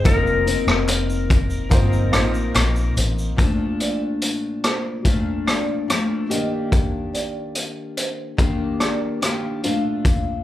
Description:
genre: indie pop, bedroom pop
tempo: 72 BPM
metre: 4/4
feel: straight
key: Bb major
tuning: A4 = 440 Hz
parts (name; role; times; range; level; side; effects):
- fingerpicked steel-string acoustic guitar; accompaniment; 0.0-10.4 s; Bb2 to Bb4; -24 LUFS; left 2 dB; wide subtle chorus, warbly pitch drift, plate reverb, slapback echo
- warm upright piano; accompaniment; 0.0-3.4 s; Bb3 to C5; -28 LUFS; right 3 dB; plate reverb, slapback echo
- clean lap steel guitar; melody; 0.1-2.9 s; Bb4; -25 LUFS; left 4 dB; lush chorus, slapback echo, plate reverb
- vintage muted fingered electric bass; bass; 0.1-3.3 s; F1 to Bb1; -21 LUFS; equal; none
- raw garage drum kit; drums; 0.1-10.2 s; hi-hat, kick drum, rim click, shaker; -20 LUFS; equal; none
- group handclap; percussion; 0.9-2.7 s; none; -33 LUFS; left 2 dB; none
- vibraphone with medium mallets; second line; 3.8-9.8 s; C5 to F5; -31 LUFS; right 6 dB; analog chorus, slapback echo, plate reverb
room: light reverb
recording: live gig heard through the venue's PA, club reverb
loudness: -18 LUFS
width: side -14 dB against mid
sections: 0.0-3.4 A section; 3.4-10.4 B section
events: none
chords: 0.1 F7sus4; 3.4 Bbmaj7; 6.3 Ebmaj7; 9.6 Bbmaj7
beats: | 0.05 0.89 1.72 2.55 | 3.38 4.22 5.05 5.88 | 6.72 7.55 8.39 9.22 | 10.05

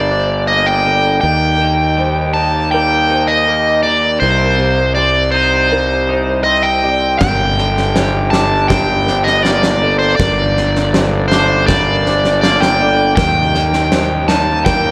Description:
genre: post-rock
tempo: 80 BPM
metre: 4/4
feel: straight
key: G minor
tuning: A4 = 440 Hz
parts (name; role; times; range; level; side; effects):
- overdriven electric guitar; melody; 0.0-14.9 s; C5 to A5; -16 LUFS; equal; diffuse ambient delay
- felt-muted upright piano; arpeggios; 0.0-14.9 s; Bb4 to D5; -29 LUFS; equal; none
- twangy electric guitar; arpeggios; 0.0-14.9 s; G2 to Eb4; -24 LUFS; equal; lush chorus, diffuse ambient delay
- fuzz fingered electric bass; bass; 0.0-14.9 s; G1 to Eb2; -20 LUFS; equal; overdrive
- big rock drum kit; drums; 7.2-14.8 s; kick drum, snare drum; -20 LUFS; equal; none
room: wet plate reverb, RT60 1.8 s, studio reverb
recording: dreamy mix soaked in reverb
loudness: -14 LUFS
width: mono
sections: 0.0-14.9 A section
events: none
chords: 0.0 Gm; 1.2 Eb; 4.2 Cm; 7.2 Gm; 13.2 Eb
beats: 0.49 | 1.24 1.99 2.73 3.48 | 4.23 4.97 5.72 6.47 | 7.21 7.96 8.71 9.45 | 10.20 10.94 11.69 12.43 | 13.18 13.92 14.67

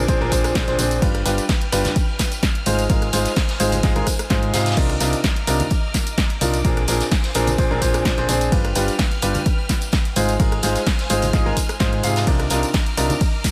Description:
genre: piano house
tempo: 128 BPM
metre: 4/4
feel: swing 53% on 16ths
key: C minor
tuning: A4 = 441 Hz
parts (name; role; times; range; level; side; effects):
- clear studio string section; sustained chords; 0.0-13.5 s; B4 to F6; -34 LUFS; equal; sidechain pumping
- solid FM bass; bass; 0.0-13.1 s; G1 to Ab2; -26 LUFS; equal; sidechain pumping
- clear grand piano; riff; 0.1-13.1 s; Bb2 to F5; -25 LUFS; equal; sidechain pumping, digital delay
- electronic kick drum; drums; 0.1-13.5 s; none; -23 LUFS; equal; overdrive
- punchy analog drum machine; drums; 0.1-13.5 s; crash cymbal, hi-hat, ride cymbal, rim click, snare drum, tambourine; -28 LUFS; equal; overdrive
- vintage brush drum kit; drums; 0.1-13.5 s; hi-hat, ride cymbal, snare drum; -34 LUFS; equal; sidechain pumping on cymbals, high-pass filter on cymbals, sidechain pumping on hats, high-pass filter on hats, high-pass filter on snare, high-pass filter on room
- tambourine and congas; percussion; 0.1-13.5 s; none; -35 LUFS; equal; none
room: light reverb, small room ambience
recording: none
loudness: -19 LUFS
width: mono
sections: 0.0-13.5 A section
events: none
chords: 0.0 Bb9; 1.0 G7; 2.7 Ab6; 4.8 Cm11; 6.6 Bb9; 8.5 G7; 10.2 Ab6; 12.3 Cm11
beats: 0.08 0.55 | 1.02 1.49 1.96 2.43 | 2.90 3.37 3.83 4.30 | 4.77 5.24 5.71 6.18 | 6.65 7.12 7.58 8.05 | 8.52 8.99 9.46 9.93 | 10.40 10.87 11.33 11.80 | 12.27 12.74 13.21

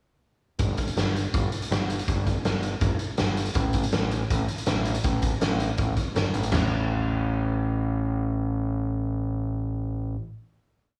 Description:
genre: indie rock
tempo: 162 BPM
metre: 4/4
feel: straight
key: unclear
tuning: A4 = 440 Hz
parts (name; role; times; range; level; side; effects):
- growling picked electric bass; bass; 0.6-10.2 s; G1 to A1; -28 LUFS; equal; overdrive
- raw garage drum kit; drums; 0.6-6.6 s; crash cymbal, hi-hat, kick drum, snare drum, toms; -29 LUFS; equal; none
room: light reverb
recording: small room ambience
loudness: -26 LUFS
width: mono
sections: 0.6-6.5 interlude; 6.5-9.5 final note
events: none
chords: none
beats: | 0.59 0.97 1.34 1.71 | 2.08 2.45 2.82 3.19 | 3.56 3.93 4.30 4.67 | 5.04 5.42 5.79 6.15 | 6.52 6.89 7.26 7.63 | 8.01 8.38 8.75 9.12

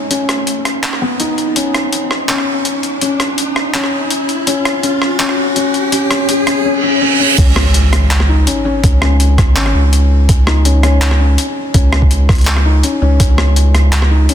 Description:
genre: half-time drum and bass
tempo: 165 BPM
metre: 4/4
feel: half-time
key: unclear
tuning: A4 = 441 Hz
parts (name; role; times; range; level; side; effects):
- felt-muted upright piano; arpeggios; 0.0-14.3 s; B3 to D#4; -17 LUFS; left 2 dB; vintage 12-bit sampler grit, digital delay
- riser, reverse cymbal and impact; sound effects; 0.0-8.8 s; none; -19 LUFS; right 2 dB; none
- boom bap sampler-style drum kit; drums; 0.1-14.3 s; crash cymbal, handclaps, hi-hat, rim click; -18 LUFS; equal; overdrive, high-pass filter on hats, soft clipping on snare, high-pass filter on snare, high-pass filter on cymbals, high-pass filter on room
- saturated sub bass; bass; 7.4-14.3 s; G#1 to C#2; -11 LUFS; equal; none
- electronic kick drum; drums; 7.4-13.3 s; none; -11 LUFS; equal; overdrive
room: light reverb, digital ambience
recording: dense, heavily limited modern master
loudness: -10 LUFS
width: side -10 dB against mid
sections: 0.0-7.4 A section; 7.4-14.3 B section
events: build-up 0.0-7.4; riser 0.0-6.7; reverse cymbal 6.7-7.4; drop 7.4-14.3; impact 7.4-8.8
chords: 0.0 Badd9; 7.4 C#5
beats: | 0.11 0.47 0.84 1.20 | 1.56 1.93 2.29 2.65 | 3.02 3.38 3.75 4.11 | 4.47 4.84 5.20 5.56 | 5.93 6.29 6.65 7.02 | 7.38 7.75 8.11 8.47 | 8.84 9.20 9.56 9.93 | 10.29 10.65 11.02 11.38 | 11.74 12.11 12.47 12.84 | 13.20 13.56 13.93 14.29

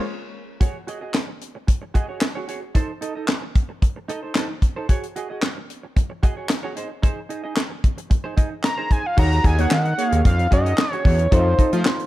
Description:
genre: early-eighties boogie funk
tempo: 112 BPM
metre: 4/4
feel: straight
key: unclear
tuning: A4 = 442 Hz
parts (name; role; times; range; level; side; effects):
- fat analog lead; melody; 0.0, 8.6-12.1 s; C5 to Bb5; -23 LUFS; equal; chorus, slapback echo
- soft string machine; sustained chords; 0.2-0.6 s; Ab3 to Db4; -43 LUFS; left 3 dB; none
- semi-hollow electric guitar; riff; 0.6-12.0 s; Eb4 to Eb5; -31 LUFS; right 4 dB; lush chorus
- tight funk drum kit; drums; 0.6-12.1 s; crash cymbal, handclaps, hi-hat, kick drum, snare drum; -19 LUFS; equal; none
- dark concert grand piano; accompaniment; 9.2-12.1 s; Eb4 to Gb5; -30 LUFS; left 2 dB; none
- fat analog bass; bass; 9.2-11.8 s; Eb2 to F3; -19 LUFS; equal; none
- analog synth brass; second line; 9.6-11.8 s; A3 to Db5; -26 LUFS; right 2 dB; chorus, phaser
room: studio reverb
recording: dark, warm production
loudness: -19 LUFS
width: side -16 dB against mid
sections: 0.6-9.2 A section; 9.2-12.1 B section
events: band accent 0.0-0.6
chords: 0.0 Bbm7; 0.6 Ebm7; 2.8 Adim/Eb; 4.9 Ebm7; 6.8 Abadd9/Eb; 9.2 Ebm11; 11.3 F7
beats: 0.07 | 0.61 1.14 1.68 2.21 | 2.75 3.29 3.82 4.36 | 4.89 5.43 5.96 6.50 | 7.04 7.57 8.11 8.64 | 9.18 9.71 10.25 10.79 | 11.32 11.86

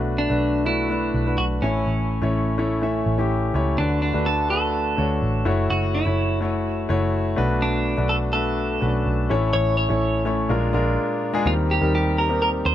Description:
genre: piano-driven pop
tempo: 125 BPM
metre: 4/4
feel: straight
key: D major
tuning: A4 = 439 Hz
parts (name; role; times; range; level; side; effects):
- clear concert grand piano; accompaniment; 0.0-12.7 s; A2 to E5; -23 LUFS; left 2 dB; none
- vintage muted picked electric bass; bass; 0.0-12.7 s; F#1 to Eb2; -24 LUFS; right 1 dB; none
- clean electric guitar; melody; 0.2-12.7 s; C#4 to C#5; -26 LUFS; right 2 dB; lush chorus, tape echo
room: light reverb, small room ambience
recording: none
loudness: -19 LUFS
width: side -12 dB against mid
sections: 0.0-3.8 A section; 3.8-11.5 B section; 11.5-12.7 C section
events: break 11.0-11.5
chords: 0.0 Bm7; 1.6 A; 3.8 D6; 5.5 F#m7; 7.4 Bm7; 9.3 A; 10.5 Bb7; 11.5 Eb6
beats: 0.42 0.90 1.38 | 1.86 2.34 2.82 3.30 | 3.78 4.26 4.74 5.22 | 5.70 6.18 6.66 7.14 | 7.62 8.10 8.58 9.06 | 9.54 10.02 10.49 10.97 | 11.45 11.93 12.41

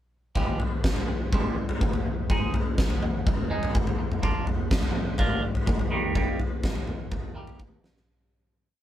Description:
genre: quiet-loud alternative rock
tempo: 124 BPM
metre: 4/4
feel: straight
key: F dorian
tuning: A4 = 440 Hz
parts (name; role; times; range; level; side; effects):
- twangy electric guitar; arpeggios; 0.4-8.1 s; Eb3 to Ab4; -32 LUFS; right 2 dB; phaser
- huge arena drum kit; drums; 0.4-8.1 s; kick drum, snare drum, toms; -25 LUFS; equal; none
room: light reverb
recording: band playing live in one room, faint mains hum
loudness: -24 LUFS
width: side -12 dB against mid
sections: 0.4-8.1 verse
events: fade-out 6.2-8.1; drum fill 7.6-8.1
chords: 0.4 Fmadd9; 2.3 Ab5; 4.2 Bb; 5.9 Eb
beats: | 0.36 0.84 1.32 1.81 | 2.29 2.77 3.26 3.74 | 4.23 4.71 5.19 5.68 | 6.16 6.64 7.12 7.60

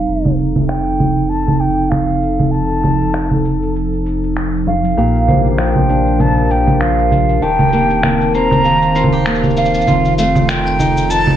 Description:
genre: folktronica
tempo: 98 BPM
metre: 4/4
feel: swing 56% on 16ths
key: F mixolydian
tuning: A4 = 440 Hz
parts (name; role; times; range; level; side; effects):
- breathy jazz flute; melody; 0.0-11.4 s; F5 to Bb5; -18 LUFS; right 1 dB; ping-pong delay
- warbly tape-like pad; sustained chords; 0.0-11.4 s; Eb3 to Bb4; -19 LUFS; right 1 dB; chorus, built-in reverb
- warm sub bass; bass; 0.0-11.4 s; Eb1 to Bb1; -20 LUFS; left 1 dB; none
- electronic shaker, congas and finger snaps; drums; 0.1-11.4 s; none; -17 LUFS; right 1 dB; none
- vibraphone with hard mallets; second line; 5.0-11.4 s; C5 to A5; -22 LUFS; left 1 dB; ping-pong delay
- fingerpicked steel-string acoustic guitar; arpeggios; 5.0-11.4 s; F2 to G4; -18 LUFS; left 1 dB; ping-pong delay
room: light reverb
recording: low-pass filter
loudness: -12 LUFS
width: side -10 dB against mid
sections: 0.0-11.4 A section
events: filter sweep 0.0-11.4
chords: 0.1 F7; 5.0 Bb6; 7.4 Eb6; 9.9 F7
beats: | 0.08 0.69 1.30 1.92 | 2.53 3.14 3.75 4.37 | 4.98 5.59 6.20 6.81 | 7.43 8.04 8.65 9.26 | 9.88 10.49 11.10

